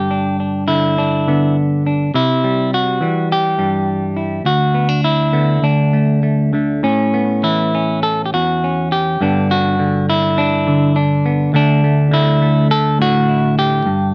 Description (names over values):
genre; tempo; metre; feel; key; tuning
folk, solo fingerstyle acoustic guitar; 103 BPM; 4/4; rubato; D mixolydian, D major from 6.8 s; A4 = 435 Hz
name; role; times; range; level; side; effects
semi-hollow electric guitar; solo; 0.0-14.1 s; D2 to A4; -16 LUFS; equal; none
room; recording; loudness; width
light reverb; dark, warm production; -16 LUFS; mono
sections
0.0-6.8 A section; 6.8-14.1 B section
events
none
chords
0.0 G; 2.1 C; 4.5 Bm/D; 5.6 D5; 6.8 Aadd9; 9.2 G; 11.5 Dsus2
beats
0.39 0.97 1.56 | 2.14 2.72 3.30 3.88 | 4.45 5.04 5.63 6.23 | 6.84 7.44 8.03 8.62 | 9.20 9.79 10.37 10.95 | 11.54 12.12 12.70 13.28 | 13.87